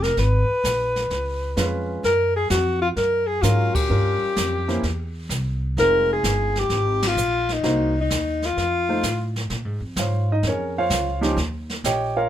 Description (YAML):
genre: jazz, small-group swing and bop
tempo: 128 BPM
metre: 4/4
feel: swing 68% on 8ths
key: F minor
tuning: A4 = 441 Hz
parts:
  - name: breathy alto saxophone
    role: melody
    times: 0.0-9.4 s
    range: Eb4 to Cb5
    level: -21 LUFS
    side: left 2 dB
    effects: none
  - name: upright bass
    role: bass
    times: 0.0-12.3 s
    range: F1 to Bb2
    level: -24 LUFS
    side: equal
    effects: none
  - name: jazz brush drum kit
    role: drums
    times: 0.0-12.3 s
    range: brushed snare drum, hi-hat, kick drum, ride cymbal, snare drum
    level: -28 LUFS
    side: right 1 dB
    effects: none
  - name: warm grand piano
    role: accompaniment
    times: 1.6-12.3 s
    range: F3 to G5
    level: -25 LUFS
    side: right 2 dB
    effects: none
room: light reverb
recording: close, detailed microphones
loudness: -20 LUFS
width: side -11 dB against mid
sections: 0.0-9.5 A section; 9.5-12.3 B section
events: band accent 3.7, 6.9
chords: 0.2 Abmadd9; 1.1 Db7; 2.0 Gbmaj7; 3.9 Gm7b5; 4.8 C; 5.8 Fm7; 7.6 Cm7b5; 8.6 F7; 9.5 Bbm9; 11.4 Eb9